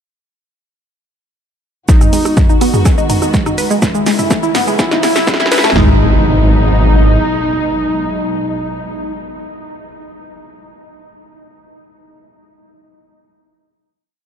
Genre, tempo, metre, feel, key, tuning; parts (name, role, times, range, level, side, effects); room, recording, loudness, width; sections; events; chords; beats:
melodic techno; 124 BPM; 4/4; straight; G# phrygian; A4 = 439 Hz
wide unison lead; melody; 1.9-9.1 s; D#4 to E4; -19 LUFS; equal; sidechain pumping, dub echo
dark studio string section; sustained chords; 1.9-9.1 s; B2 to F#4; -23 LUFS; right 1 dB; sidechain pumping
analog pluck; arpeggios; 1.9-6.0 s; G#3 to B4; -18 LUFS; equal; chorus, phaser, sidechain pumping, digital delay
punchy analog drum machine; drums; 1.9-5.9 s; kick drum, snare drum, toms; -13 LUFS; equal; studio reverb
punchy analog drum machine; drums; 1.9-5.8 s; hi-hat, rim click, shaker, snare drum, toms; -19 LUFS; equal; studio reverb
riser and impact; sound effects; 4.0-9.2 s; -21 LUFS; equal
swelling detuned saw bass; bass; 2.1-7.2 s; F#1 to A1; -13 LUFS; equal; tube saturation, sidechain pumping, high-pass filter
light reverb, digital ambience; dark, warm production, high-pass filter; -10 LUFS; side -8 dB against mid
1.9-5.8 build; 5.8-9.6 final chord
build-up 1.9-5.8; drum fill 1.9-5.8; filter sweep on synth arpeggio sound 1.9-5.8; filter sweep 1.9-5.8; riser 4.0-5.8
1.9 G#m7; 3.8 A; 5.8 G#m7
| 1.89 2.37 2.85 3.34 | 3.82 4.31 4.79 5.27 | 5.76 6.24 6.72 7.21 | 7.69 8.18 8.66 9.14